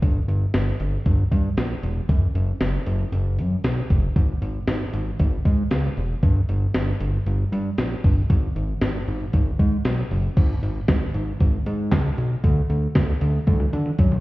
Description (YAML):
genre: synth-pop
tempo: 116 BPM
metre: 4/4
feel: straight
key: unclear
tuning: A4 = 440 Hz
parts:
  - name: fat analog bass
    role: bass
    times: 0.0-14.2 s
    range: E1 to D3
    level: -22 LUFS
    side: equal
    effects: none
  - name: gated 80s digital drum machine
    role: drums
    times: 0.0-14.2 s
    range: crash cymbal, handclaps, hi-hat, kick drum, snare drum, toms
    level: -22 LUFS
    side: equal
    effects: gated reverb, gated reverb snare
room: little or no reverb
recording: heard muffled through a wall, stone room reverb, EQ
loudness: -20 LUFS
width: side -19 dB against mid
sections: 0.0-10.4 A section; 10.4-14.2 B section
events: drum fill 13.5-14.2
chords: none